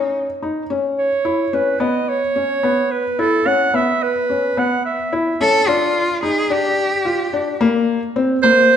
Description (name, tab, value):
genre	contemporary instrumental, chamber music in an uneven meter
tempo	217 BPM (eighths)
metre	7/8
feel	straight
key	unclear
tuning	A4 = 440 Hz
part	clear cello	second line	0.0-0.2, 5.4-7.6 s	Eb4 to A4	-18 LUFS	equal	none
part	felt-muted upright piano	arpeggios	0.0-8.8 s	Bb3 to F4	-19 LUFS	left 3 dB	none
part	clear clarinet	melody	1.0-5.4, 8.4-8.8 s	A4 to F#5	-17 LUFS	right 4 dB	none
room	wet recital hall reverb, RT60 1.4 s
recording	nothing above 10.5 kHz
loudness	-16 LUFS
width	side -8 dB against mid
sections	0.0-8.8 A section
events	none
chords	0.0 N.C.; 1.8 Bsus4; 5.7 G5; 7.6 Bbsus2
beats	0.16 0.43 0.71 0.98 1.26 1.53 | 1.81 2.08 2.36 2.64 2.91 3.19 3.46 | 3.74 4.02 4.29 4.57 4.85 5.13 5.40 | 5.68 5.96 6.23 6.51 6.79 7.06 7.34 | 7.62 7.89 8.17 8.44 8.72